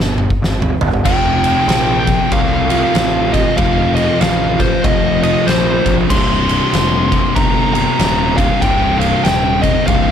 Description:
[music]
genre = stoner and doom metal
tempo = 95 BPM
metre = 4/4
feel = swing 62% on 8ths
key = unclear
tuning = A4 = 439 Hz
[part]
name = fuzz picked electric bass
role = bass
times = 0.0-10.1 s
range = C1 to C2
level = -19 LUFS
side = equal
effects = overdrive
[part]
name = oversized low-tuned drum kit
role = drums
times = 0.0-10.1 s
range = crash cymbal, kick drum, ride cymbal, snare drum, toms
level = -17 LUFS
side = equal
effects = none
[part]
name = fuzz guitar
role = riff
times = 1.0-10.1 s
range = C2 to F3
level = -22 LUFS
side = right 11 dB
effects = distortion
[part]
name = scooped high-gain guitar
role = riff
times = 1.0-10.1 s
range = C2 to F3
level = -21 LUFS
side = right 1 dB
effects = distortion
[part]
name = fuzz lead guitar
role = melody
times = 1.1-10.1 s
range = C5 to C6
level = -17 LUFS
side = left 1 dB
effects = distortion, tape echo
[part]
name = thick fuzz guitar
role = riff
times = 1.1-10.1 s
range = C2 to F3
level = -20 LUFS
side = left 11 dB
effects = distortion
[sound]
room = light reverb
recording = none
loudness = -12 LUFS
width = side -8 dB against mid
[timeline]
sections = 0.0-1.1 A section; 1.1-10.1 B section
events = drum fill 0.0-1.1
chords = 0.0 N.C.; 1.1 F; 6.1 Cm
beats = 0.42 | 1.06 1.69 2.32 2.95 | 3.58 4.21 4.84 5.47 | 6.10 6.73 7.36 7.99 | 8.62 9.25 9.88

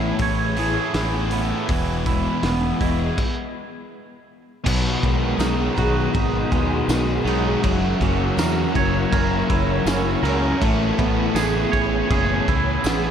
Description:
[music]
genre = rock, shoegaze and dream pop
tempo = 81 BPM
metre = 4/4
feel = straight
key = B major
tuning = A4 = 440 Hz
[part]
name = picked twelve-string acoustic guitar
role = arpeggios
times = 0.0-13.1 s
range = E3 to G#4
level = -29 LUFS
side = right 4 dB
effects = ensemble chorus, diffuse ambient delay
[part]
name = sludgy distorted guitar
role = riff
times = 0.0-13.1 s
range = E2 to B3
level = -26 LUFS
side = left 1 dB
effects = overdrive
[part]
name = thick fuzz guitar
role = riff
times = 0.0-13.1 s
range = B2 to D#5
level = -27 LUFS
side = left 7 dB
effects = distortion, ensemble chorus
[part]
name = twangy electric guitar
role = riff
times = 0.0-13.1 s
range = B2 to C#5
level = -26 LUFS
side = right 6 dB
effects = reverse reverb
[part]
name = fuzz fingered electric bass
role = bass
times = 0.0-13.1 s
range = E1 to E2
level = -25 LUFS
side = equal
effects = overdrive
[part]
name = loose indie drum kit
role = drums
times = 0.2-13.0 s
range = crash cymbal, hi-hat, kick drum, snare drum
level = -25 LUFS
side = equal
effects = none
[part]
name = string machine, cellos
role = sustained chords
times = 4.6-13.1 s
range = G#4 to E6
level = -30 LUFS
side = equal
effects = phaser, ensemble chorus
[part]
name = tambourine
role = percussion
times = 5.4-13.0 s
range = none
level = -39 LUFS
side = left 13 dB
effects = none
[sound]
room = wet lush hall reverb, RT60 3.0 s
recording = dreamy mix soaked in reverb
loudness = -18 LUFS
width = side -8 dB against mid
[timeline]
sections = 0.0-4.7 A section; 4.7-13.1 B section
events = stop 3.2-4.7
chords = 0.0 Amaj9; 1.7 Emaj7; 4.7 B6; 7.6 F#7; 10.6 Amaj9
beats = 0.20 0.94 | 1.69 2.43 3.18 3.92 | 4.67 5.41 6.15 6.90 | 7.64 8.39 9.13 9.87 | 10.62 11.36 12.11 12.85

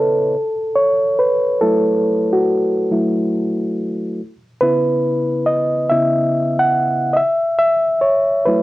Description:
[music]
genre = hip hop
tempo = 70 BPM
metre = 4/4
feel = swing 65% on 16ths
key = unclear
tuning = A4 = 442 Hz
[part]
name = bright reed electric piano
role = solo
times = 0.0-8.6 s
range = C#3 to F#5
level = -14 LUFS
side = equal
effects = cassette tape, low-pass filter
[sound]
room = moderate studio reverb, RT60 0.5 s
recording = worn, warbling old tape, cassette tape, warbly pitch drift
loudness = -15 LUFS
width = side -17 dB against mid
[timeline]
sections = 0.0-8.6 A section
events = reed electric piano solo 0.0-8.6; filter sweep on reed electric piano 0.0-8.6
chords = 0.3 F#m7; 4.2 C#m7; 7.2 F#7(no3) (rootless)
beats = | 0.77 1.63 2.48 3.34 | 4.20 5.05 5.91 6.77 | 7.63 8.48

